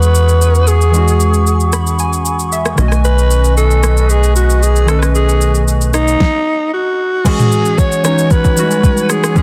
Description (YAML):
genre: amapiano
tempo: 114 BPM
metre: 4/4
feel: straight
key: E major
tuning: A4 = 440 Hz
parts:
  - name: breathy alto saxophone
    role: melody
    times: 0.0-9.4 s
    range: D#4 to C#5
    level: -18 LUFS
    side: equal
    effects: tape echo
  - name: warm analog keys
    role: accompaniment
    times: 0.0-9.4 s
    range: D#3 to B5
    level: -20 LUFS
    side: equal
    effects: chorus
  - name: mellow small flute group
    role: sustained chords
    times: 0.0-9.4 s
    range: C#4 to C#6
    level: -25 LUFS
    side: equal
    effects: sidechain pumping
  - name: plucky analog bass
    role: bass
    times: 0.0-6.2 s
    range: B1 to E2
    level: -14 LUFS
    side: equal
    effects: none
  - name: smooth R&B drum kit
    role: drums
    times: 0.0-9.4 s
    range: crash cymbal, kick drum, rim click, shaker, snare drum, toms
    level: -18 LUFS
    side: equal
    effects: overdrive
room: digital ambience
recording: dense, heavily limited modern master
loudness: -12 LUFS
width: mono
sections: 0.0-7.3 A section; 7.3-9.4 B section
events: synth keys fill 1.5-3.0; stop 6.2-7.3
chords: 0.0 E69; 2.8 B13; 7.3 E69